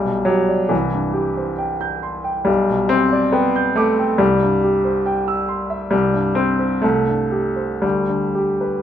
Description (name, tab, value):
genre	classical, romantic character piece for solo piano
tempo	58-71 BPM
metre	2/4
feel	rubato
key	unclear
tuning	A4 = 440 Hz
part	clear baby grand piano	solo	0.0-8.8 s	B1 to G6	-16 LUFS	equal	none
room	light reverb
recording	minimal, uncompressed stereo recording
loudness	-16 LUFS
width	side -10 dB against mid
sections	0.0-8.8 A section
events	none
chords	0.0 G/B; 0.7 C; 2.5 G/B; 4.2 C; 5.9 C5; 7.8 G/D